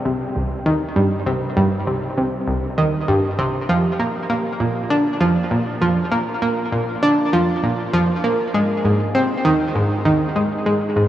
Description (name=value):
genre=ambient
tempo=99 BPM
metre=4/4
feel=straight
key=unclear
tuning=A4 = 440 Hz
part: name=analog pluck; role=solo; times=0.1-11.1 s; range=C2 to D4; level=-17 LUFS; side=equal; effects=chorus, tape echo
room=wet huge ambient reverb, RT60 9.3 s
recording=worn, warbling old tape, cassette tape, warbly pitch drift, small room reverb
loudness=-17 LUFS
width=side -12 dB against mid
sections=0.0-11.1 A section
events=none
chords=none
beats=0.06 0.66 | 1.27 1.88 2.48 3.09 | 3.69 4.30 4.91 5.51 | 6.12 6.72 7.33 7.94 | 8.54 9.15 9.75 10.36 | 10.97